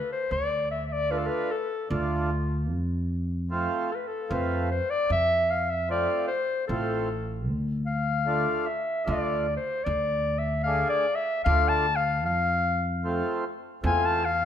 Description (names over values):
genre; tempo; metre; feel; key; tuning
klezmer; 75 BPM; 3/4; straight; D dorian sharp4; A4 = 439 Hz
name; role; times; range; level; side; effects
mellow clarinet; melody; 0.0-14.4 s; F4 to A5; -26 LUFS; left 3 dB; none
upright bass; bass; 0.3-14.4 s; A1 to F2; -29 LUFS; equal; none
mellow accordion; accompaniment; 1.1-14.2 s; A3 to G#4; -31 LUFS; right 3 dB; none
room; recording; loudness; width
moderate recital hall reverb, RT60 1.7 s; minimal, uncompressed stereo recording; -24 LUFS; side -9 dB against mid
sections
0.0-14.4 A section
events
clarinet solo 0.0-14.4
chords
0.0 Dm; 2.7 F; 7.5 Dm; 12.3 F